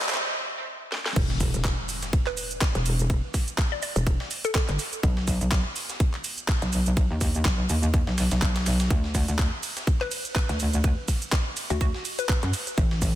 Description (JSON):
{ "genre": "bass house", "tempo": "124 BPM", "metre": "4/4", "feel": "swing 56% on 16ths", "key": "unclear", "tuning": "A4 = 440 Hz", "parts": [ { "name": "dark analog pad", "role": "sustained chords", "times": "0.0-13.2 s", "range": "A3 to F#5", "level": "-57 LUFS", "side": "right 2 dB", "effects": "none" }, { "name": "metallic wobble bass", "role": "bass", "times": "0.0-13.1 s", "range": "E1 to F#2", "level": "-25 LUFS", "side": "equal", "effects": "distortion, chorus, overdrive, sidechain pumping, high-pass filter" }, { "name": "garage drum kit", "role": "drums", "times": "0.0-13.1 s", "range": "crash cymbal, handclaps, hi-hat, ride cymbal, shaker, snare drum", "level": "-30 LUFS", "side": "right 1 dB", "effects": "studio reverb" }, { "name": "riser and impact", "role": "sound effects", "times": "0.0-3.1 s", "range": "none", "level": "-35 LUFS", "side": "equal", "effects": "none" }, { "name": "breakbeat sampler-style drum kit", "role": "drums", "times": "1.2-13.1 s", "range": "hi-hat, ride cymbal, snare drum", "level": "-38 LUFS", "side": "equal", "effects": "sidechain pumping on cymbals, high-pass filter on cymbals, studio reverb, high-pass filter on snare, sidechain pumping on hats, high-pass filter on hats, high-pass filter on room" }, { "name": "electronic kick drum", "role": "drums", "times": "1.2-13.1 s", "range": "none", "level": "-24 LUFS", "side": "equal", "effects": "studio reverb" }, { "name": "hollow square pluck", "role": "melody", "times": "2.3-4.6, 10.0-12.4 s", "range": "F#4 to D5", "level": "-33 LUFS", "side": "left 2 dB", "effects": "chorus, tape echo" } ], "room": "digital ambience", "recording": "dense, heavily limited modern master, high-pass filter", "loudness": "-23 LUFS", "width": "side -13 dB against mid", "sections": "0.0-1.2 A section; 1.2-13.2 B section", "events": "build-up 0.0-1.2; drum fill 0.0, 0.9; riser 0.0; break 0.2-1.2; drop 1.2-13.2; impact 1.2-3.1", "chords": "0.0 Am7; 1.2 Em; 5.0 B; 8.9 D" }